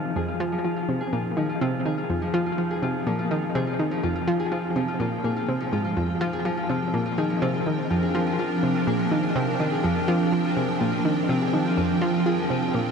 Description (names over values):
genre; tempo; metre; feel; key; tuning
ambient, sequencer-driven space music; 124 BPM; 4/4; straight; F dorian; A4 = 438 Hz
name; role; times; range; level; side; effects
evolving wavetable pad; sustained chords; 0.0-12.9 s; F3 to G5; -28 LUFS; right 2 dB; ensemble chorus, built-in reverb
Celtic harp; arpeggios; 0.0-12.9 s; F3 to Ab4; -29 LUFS; left 5 dB; auto-pan, low-pass filter, analog delay
analog pluck; riff; 0.0-12.9 s; F2 to F3; -25 LUFS; right 1 dB; chorus, cassette tape, analog delay
room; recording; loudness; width
wet huge ambient reverb, RT60 7.2 s; dark, warm production; -22 LUFS; side -6 dB against mid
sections
0.0-12.9 A section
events
fade-in on ambient pad 0.0-12.9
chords
0.0 Fm7